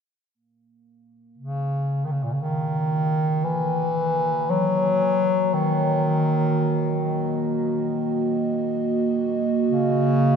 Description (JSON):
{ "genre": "dark ambient drone", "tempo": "free time", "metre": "none", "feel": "none", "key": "Eb minor", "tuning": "A4 = 440 Hz", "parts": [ { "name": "dark analog pad", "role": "sustained chords", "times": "1.4-10.4 s", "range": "Bb3 to Eb5", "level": "-26 LUFS", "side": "right 3 dB", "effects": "chorus" }, { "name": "warm bass clarinet", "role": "melody", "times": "1.4-10.4 s", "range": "Bb2 to Gb3", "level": "-22 LUFS", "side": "left 1 dB", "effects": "ping-pong delay" } ], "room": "wet cathedral reverb, RT60 6.9 s", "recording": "dark, warm production", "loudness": "-20 LUFS", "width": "side -7 dB against mid", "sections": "0.4-10.4 A section", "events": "fade-in on analog synth pad 0.4-10.4", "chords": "0.4 Ebm" }